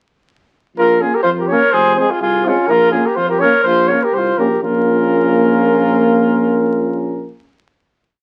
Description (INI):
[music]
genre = balkan folk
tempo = 125 BPM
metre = 2/4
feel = swing 55% on 16ths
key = Bb minor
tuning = A4 = 440 Hz
[part]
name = mellow flugelhorn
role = melody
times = 0.8-7.3 s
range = F4 to Db5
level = -18 LUFS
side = equal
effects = none
[part]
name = mellow alto saxophone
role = second line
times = 0.8-7.3 s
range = Db4 to Bb4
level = -21 LUFS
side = equal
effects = none
[part]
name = mellow tuba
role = bass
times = 0.8-7.3 s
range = F1 to F2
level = -24 LUFS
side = equal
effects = none
[part]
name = clear euphonium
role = accompaniment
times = 1.0-7.3 s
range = Ab3 to Bb3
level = -21 LUFS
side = equal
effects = none
[part]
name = mellow trombone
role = accompaniment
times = 1.0-7.3 s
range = C4 to Db4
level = -24 LUFS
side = equal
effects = none
[sound]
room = moderate studio reverb, RT60 0.6 s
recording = very old 78 rpm record, vinyl crackle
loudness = -14 LUFS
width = mono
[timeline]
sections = 0.8-4.6 A section; 4.6-6.6 final chord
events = none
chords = 0.8 Bbm; 1.7 Fm; 2.7 Bbm